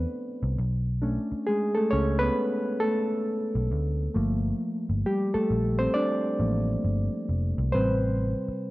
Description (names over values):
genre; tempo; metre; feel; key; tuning
R&B, neo-soul; 67 BPM; 4/4; swing 64% on 16ths; unclear; A4 = 440 Hz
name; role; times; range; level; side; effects
bright reed electric piano; accompaniment; 0.0-8.7 s; C3 to D5; -26 LUFS; equal; spring reverb
vintage muted picked electric bass; bass; 0.0-8.5 s; F1 to D2; -27 LUFS; equal; none
room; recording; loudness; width
little or no reverb; dry, close 1970s-style studio recording; -24 LUFS; side -19 dB against mid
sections
0.0-7.7 A section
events
reed electric piano solo 0.0-7.7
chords
0.0 Dm9; 0.6 Bm9; 4.2 Gm9; 7.7 Am9